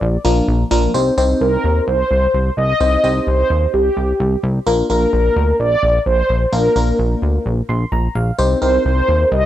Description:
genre	synth-pop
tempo	129 BPM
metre	4/4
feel	straight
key	C minor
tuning	A4 = 440 Hz
part	mellow synth brass	melody	0.0-9.5 s	G4 to Eb5	-17 LUFS	equal	chorus
part	chorused synth bass	bass	0.0-9.5 s	Bb1 to Eb2	-17 LUFS	equal	none
part	FM electric piano	accompaniment	0.2-9.4 s	F3 to C6	-19 LUFS	left 1 dB	chorus, phaser
room	little or no reverb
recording	dry, gritty hardware recording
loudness	-14 LUFS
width	side -12 dB against mid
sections	0.9-9.5 A section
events	FM electric piano fill 7.5-8.4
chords	0.0 Bb; 0.9 Cm; 4.7 Bb; 8.4 Cm

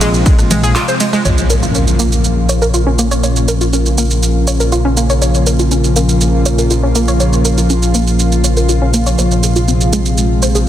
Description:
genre	melodic techno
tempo	121 BPM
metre	4/4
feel	straight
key	Bb minor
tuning	A4 = 440 Hz
part	lush unison pad	sustained chords	0.0-10.7 s	C3 to F4	-16 LUFS	left 1 dB	chorus, vintage 12-bit sampler grit, sidechain pumping
part	analog pluck	arpeggios	0.0-10.6 s	Ab3 to Db5	-18 LUFS	equal	chorus, sidechain pumping, dub echo
part	dark detuned saw bass	bass	0.0-10.7 s	Bb1	-14 LUFS	equal	sidechain pumping
part	techno drum kit	drums	0.0-10.6 s	congas, handclaps, hi-hat, ride cymbal, rim click, shaker	-19 LUFS	right 3 dB	overdrive, small room ambience
part	impact	sound effects	1.3-3.2 s	none	-18 LUFS	equal	none
room	light reverb, digital ambience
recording	dense, heavily limited modern master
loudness	-10 LUFS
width	side -11 dB against mid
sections	0.0-1.3 A section; 1.3-10.7 B section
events	drop 0.0-1.3; break 0.8-1.3; impact 1.3-3.2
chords	0.0 Fm/Bb; 1.3 Bbm; 9.2 Fm/Bb

